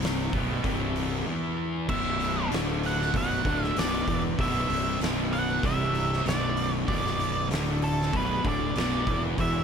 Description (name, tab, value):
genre	stoner and doom metal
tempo	96 BPM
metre	4/4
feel	straight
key	unclear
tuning	A4 = 440 Hz
part	raw garage guitar	riff	0.0-9.6 s	B1 to E3	-33 LUFS	left 1 dB	overdrive
part	thick fuzz guitar	riff	0.0-9.6 s	B1 to E3	-32 LUFS	left 10 dB	distortion
part	thick fuzz guitar	riff	0.0-9.6 s	B1 to E3	-33 LUFS	right 11 dB	distortion
part	fuzz fingered electric bass	bass	0.0-9.6 s	B0 to E1	-32 LUFS	equal	overdrive
part	oversized low-tuned drum kit	drums	0.0-9.5 s	crash cymbal, hi-hat, kick drum, snare drum	-32 LUFS	equal	none
part	octave-fuzz lead guitar	melody	1.9-9.6 s	A4 to F#5	-30 LUFS	right 2 dB	distortion, ping-pong delay
room	little or no reverb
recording	none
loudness	-24 LUFS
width	side -7 dB against mid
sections	0.0-1.9 A section; 1.9-9.6 B section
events	break 1.3-1.9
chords	0.0 N.C.; 1.9 Bm